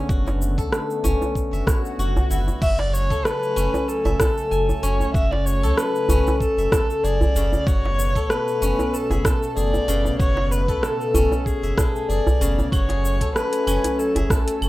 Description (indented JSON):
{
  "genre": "organic downtempo",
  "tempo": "95 BPM",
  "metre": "4/4",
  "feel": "swing 54% on 16ths",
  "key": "F# minor",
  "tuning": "A4 = 440 Hz",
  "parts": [
    { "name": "warm analog pad", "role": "sustained chords", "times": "0.0-14.7 s", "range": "B2 to G#5", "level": "-31 LUFS", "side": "equal", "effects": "lush chorus, sidechain pumping" },
    { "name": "steel-string zither", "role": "arpeggios", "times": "0.0-14.7 s", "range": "C#3 to G#5", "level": "-26 LUFS", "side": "left 3 dB", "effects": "low-pass filter, digital delay" },
    { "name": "warm sub bass", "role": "bass", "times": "0.1-14.7 s", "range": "F#1 to C#2", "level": "-23 LUFS", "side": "equal", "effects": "tube saturation, sidechain pumping" },
    { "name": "deep house drum kit", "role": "drums", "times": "0.1-14.7 s", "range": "claves, crash cymbal, hi-hat, rim click, shaker", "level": "-27 LUFS", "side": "equal", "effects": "overdrive" },
    { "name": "electronic kick drum", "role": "drums", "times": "0.1-14.4 s", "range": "none", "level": "-22 LUFS", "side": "equal", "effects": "none" },
    { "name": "djembe", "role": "percussion", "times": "0.3-14.4 s", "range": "none", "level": "-25 LUFS", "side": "right 1 dB", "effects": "none" },
    { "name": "swell", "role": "sound effects", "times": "1.6-2.6 s", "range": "none", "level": "-33 LUFS", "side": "left 1 dB", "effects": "none" },
    { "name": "rich kamancheh", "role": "melody", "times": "2.6-14.7 s", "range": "G#4 to E5", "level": "-25 LUFS", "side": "equal", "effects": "digital delay" }
  ],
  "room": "light reverb",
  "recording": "rough home demo mix",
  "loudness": "-18 LUFS",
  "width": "side -17 dB against mid",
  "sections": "0.0-14.7 A section",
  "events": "swell 1.6-2.6",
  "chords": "0.0 Bm7/F#; 2.6 F#m7; 7.7 Bm7/F#; 12.7 F#m7"
}